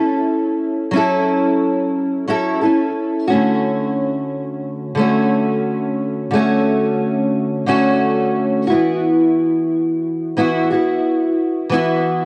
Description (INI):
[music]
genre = indie pop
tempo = 89 BPM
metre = 4/4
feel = straight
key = unclear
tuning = A4 = 439 Hz
[part]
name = fingerpicked steel-string acoustic guitar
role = solo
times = 0.0-12.3 s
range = D3 to A4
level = -18 LUFS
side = equal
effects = analog chorus, vibrato effect, cassette tape, tape echo
[sound]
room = wet booth ambience, RT60 0.3 s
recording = home recording on cassette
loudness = -18 LUFS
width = mono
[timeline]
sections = 0.0-12.3 A section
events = none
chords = 0.0 F#m7; 3.3 Dmaj7; 8.7 Esus2